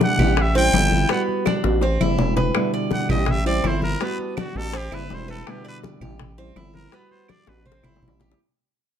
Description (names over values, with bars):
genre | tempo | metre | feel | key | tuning
latin, Cuban son and guajira | 165 BPM | 4/4 | straight | unclear | A4 = 444 Hz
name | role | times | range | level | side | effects
trumpet with straight mute | melody | 0.0-8.0 s | D4 to G5 | -25 LUFS | equal | plate reverb
nylon-string guitar | accompaniment | 0.0-8.4 s | B2 to F#4 | -26 LUFS | right 1 dB | none
Cuban tres | arpeggios | 0.0-8.4 s | B3 to D5 | -28 LUFS | right 1 dB | none
bongos | percussion | 0.0-8.4 s | none | -29 LUFS | left 8 dB | none
congas | percussion | 0.0-8.3 s | none | -25 LUFS | left 2 dB | none
growling FM bass | bass | 0.2-8.3 s | E1 to A1 | -23 LUFS | equal | none
claves | percussion | 0.2-8.0 s | none | -35 LUFS | right 8 dB | none
room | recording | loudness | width
light reverb | dark, warm production | -18 LUFS | side -9 dB against mid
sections
0.0-8.4 A section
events
fade-out 0.0-8.4; muted trumpet solo 0.0-8.4; drum fill 1.5-2.6, 7.3-8.4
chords
0.4 Am7; 1.1 Gmaj7; 1.8 Am7; 2.6 Em7; 3.3 Am7; 4.0 Gmaj7; 4.7 Am7; 5.5 Em7; 6.2 Am7; 6.9 Gmaj7; 7.7 Am7